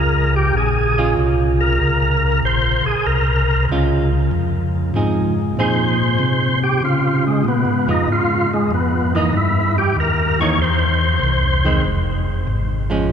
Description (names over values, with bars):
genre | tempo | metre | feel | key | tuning
jazz | 96 BPM | 4/4 | swing 67% on 8ths | F minor | A4 = 440 Hz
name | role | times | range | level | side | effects
percussive tonewheel organ | melody | 0.0-11.8 s | Ab3 to Db5 | -19 LUFS | equal | slow rotary speaker, overdrive, chorus vibrato
hollow-body jazz guitar | accompaniment | 0.0-13.1 s | D#3 to Ab4 | -24 LUFS | right 3 dB | none
mellow tonewheel organ | bass | 0.0-13.1 s | F1 to Db3 | -18 LUFS | left 1 dB | slow rotary speaker
room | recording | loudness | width
wet cathedral reverb, RT60 6.1 s | recorded in a church or concert hall | -15 LUFS | side -8 dB against mid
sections
0.0-13.1 A section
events
tonewheel organ solo 0.0-13.1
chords
0.0 Bbm7; 4.3 Fm7; 6.8 Db7; 9.3 C7#9; 11.8 Fm